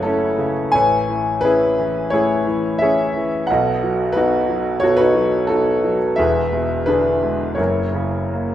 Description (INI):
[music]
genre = classical, lyrical solo piano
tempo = 87 BPM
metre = 4/4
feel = rubato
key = unclear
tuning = A4 = 440 Hz
[part]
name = warm grand piano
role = solo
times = 0.0-8.5 s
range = E1 to G#5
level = -16 LUFS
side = equal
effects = none
[sound]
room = moderate scoring stage reverb, RT60 1.5 s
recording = recorded in a church or concert hall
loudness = -16 LUFS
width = side -11 dB against mid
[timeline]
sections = 0.0-8.5 A section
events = none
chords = 0.0 F#m9; 0.7 Amaj9; 3.5 B7; 6.2 E7; 7.6 F#7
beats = 0.05 | 0.74 1.45 2.14 2.82 | 3.49 4.16 4.83 5.50 | 6.19 6.88 7.58 8.34